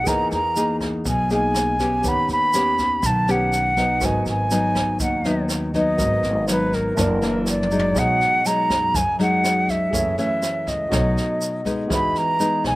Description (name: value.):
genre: bossa nova.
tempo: 122 BPM.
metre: 4/4.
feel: straight.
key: G# minor, B major from 8.0 s.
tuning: A4 = 440 Hz.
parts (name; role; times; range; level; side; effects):
concert flute; melody; 0.0-12.8 s; A#4 to B5; -21 LUFS; right 1 dB; none.
nylon-string guitar; accompaniment; 0.0-12.8 s; F#2 to G#4; -23 LUFS; left 2 dB; none.
warm grand piano; accompaniment; 0.0-12.8 s; E4 to A5; -32 LUFS; right 3 dB; slapback echo.
upright bass; bass; 0.0-12.8 s; F#1 to F#2; -26 LUFS; equal; none.
jazz brush drum kit; drums; 0.1-12.8 s; kick drum, rim click, snare drum, toms; -29 LUFS; equal; none.
tube shaker; percussion; 0.1-12.8 s; none; -32 LUFS; right 3 dB; none.
room: little or no reverb.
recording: none.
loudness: -18 LUFS.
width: side -19 dB against mid.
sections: 0.0-8.0 A section; 8.0-12.8 B section.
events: drum fill 7.5-8.0.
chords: 0.1 Emaj9#11; 2.0 D#7alt; 4.0 G#m7; 7.0 F#7alt; 8.0 B6; 9.9 F#m7; 10.9 B7; 11.9 Emaj7.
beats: | 0.07 0.56 1.05 1.55 | 2.04 2.53 3.03 3.52 | 4.01 4.51 5.00 5.50 | 5.99 6.48 6.97 7.47 | 7.96 8.45 8.95 9.44 | 9.93 10.43 10.92 11.41 | 11.90 12.40.